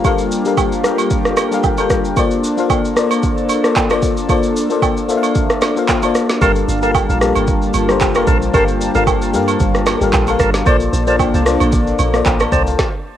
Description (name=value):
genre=amapiano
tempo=113 BPM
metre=4/4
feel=swing 55% on 16ths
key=Bb major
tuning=A4 = 444 Hz
part: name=FM electric piano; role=accompaniment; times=0.0-12.9 s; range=G3 to Bb5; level=-17 LUFS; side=left 6 dB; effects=chorus
part: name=airy breathy pad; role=sustained chords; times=0.0-12.8 s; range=G3 to A5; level=-21 LUFS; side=right 2 dB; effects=chorus, sidechain pumping
part: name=afro-pop drum kit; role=drums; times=0.0-12.9 s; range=handclaps, kick drum, rim click, shaker, snare drum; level=-18 LUFS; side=right 1 dB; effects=overdrive, cassette tape
part: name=agogo bells and woodblock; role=percussion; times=0.0-12.5 s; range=none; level=-23 LUFS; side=right 10 dB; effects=none
part: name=tonewheel organ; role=stabs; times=6.4-12.6 s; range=Bb4 to A5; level=-20 LUFS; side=right 1 dB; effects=overdrive, slow rotary speaker, tape echo
part: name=deep log drum bass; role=bass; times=6.4-12.8 s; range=F1 to G2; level=-19 LUFS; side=right 1 dB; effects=none
room=light reverb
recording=home recording on cassette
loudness=-13 LUFS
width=side -11 dB against mid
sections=0.0-13.2 A section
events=FM electric piano fill 1.4-2.2; stop 12.8-13.2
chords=0.0 Gm9; 2.2 Bbmaj9; 6.4 Gm9; 10.7 Bbmaj9